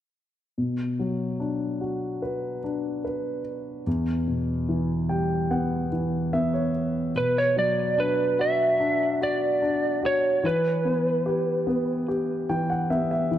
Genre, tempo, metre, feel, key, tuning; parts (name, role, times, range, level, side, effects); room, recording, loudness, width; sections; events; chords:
pop; 73 BPM; 4/4; straight; B minor; A4 = 440 Hz
dark concert grand piano; accompaniment; 0.6-13.4 s; E2 to G5; -25 LUFS; left 1 dB
lightly driven lead guitar; melody; 7.2-12.1 s; B4 to E5; -23 LUFS; right 2 dB
moderate lush hall reverb, RT60 2.5 s; -23 LUFS; side -11 dB against mid
0.6-7.2 A section; 7.2-13.4 B section
grand piano fill 4.7-7.2, 12.1-13.4
0.6 Bm; 3.9 Emadd9; 7.2 Bm; 10.4 Em